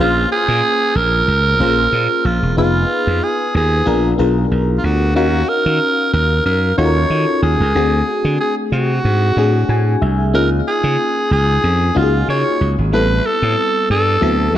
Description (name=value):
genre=polished 1980s jazz-funk pop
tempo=93 BPM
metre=4/4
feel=swing 54% on 16ths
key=Bb minor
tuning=A4 = 440 Hz
part: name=raspy alto saxophone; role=melody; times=0.0-14.6 s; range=F4 to Db5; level=-17 LUFS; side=right 2 dB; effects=none
part: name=FM electric piano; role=accompaniment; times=0.0-14.6 s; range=F#3 to G#5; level=-19 LUFS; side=left 3 dB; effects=lush chorus
part: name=slap bass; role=bass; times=0.0-14.6 s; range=E1 to Eb3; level=-16 LUFS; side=right 1 dB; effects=none
room=light reverb, small room ambience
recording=dark, warm production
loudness=-13 LUFS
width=side -11 dB against mid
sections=0.0-14.6 A section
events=FM electric piano fill 9.4-10.3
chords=0.0 Bbm9; 2.6 Fm7b5; 3.9 Bb7b9; 5.2 Ebm9; 7.8 D7#11; 10.3 Db6; 12.9 Am7